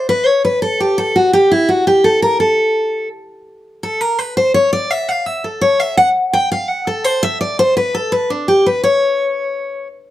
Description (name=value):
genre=bluegrass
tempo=168 BPM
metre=4/4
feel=straight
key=unclear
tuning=A4 = 440 Hz
part: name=picked steel-string acoustic guitar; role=solo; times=0.0-9.9 s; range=D4 to G5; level=-13 LUFS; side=left 1 dB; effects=none
room=light reverb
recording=dark, warm production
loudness=-13 LUFS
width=side -14 dB against mid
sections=0.0-10.1 A section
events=steel-string acoustic guitar solo 0.0-10.1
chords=none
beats=| 0.26 0.62 0.98 1.33 | 1.69 2.05 2.40 2.76 | 3.12 3.48 3.83 4.19 | 4.55 4.91 5.26 5.62 | 5.98 6.33 6.69 7.05 | 7.41 7.76 8.12 8.48 | 8.84 9.19 9.55